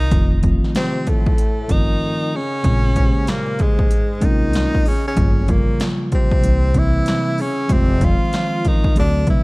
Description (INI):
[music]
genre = hip hop, jazz-hop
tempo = 95 BPM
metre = 4/4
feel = swing 64% on 16ths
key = F minor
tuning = A4 = 438 Hz
[part]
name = bright tenor saxophone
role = melody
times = 0.0-9.4 s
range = Ab3 to F4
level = -23 LUFS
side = equal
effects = analog delay
[part]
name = growling tenor saxophone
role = second line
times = 0.0-9.4 s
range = Ab2 to F3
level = -28 LUFS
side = left 2 dB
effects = analog delay
[part]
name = upright bass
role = bass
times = 0.0-9.4 s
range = F1 to D2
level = -20 LUFS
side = equal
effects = none
[part]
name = mellow tine electric piano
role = accompaniment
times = 0.1-9.4 s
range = C3 to C5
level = -22 LUFS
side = equal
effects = none
[part]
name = big-room dance drum kit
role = drums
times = 0.1-9.4 s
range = hi-hat, kick drum, snare drum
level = -18 LUFS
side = equal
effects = none
[sound]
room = small room ambience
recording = dark, warm production, vinyl crackle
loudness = -15 LUFS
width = side -24 dB against mid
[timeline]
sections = 0.0-9.4 A section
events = break 2.0-2.6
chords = 0.1 F7; 2.6 Bbm9; 5.2 Gm7b5; 6.4 C7; 7.7 Fm7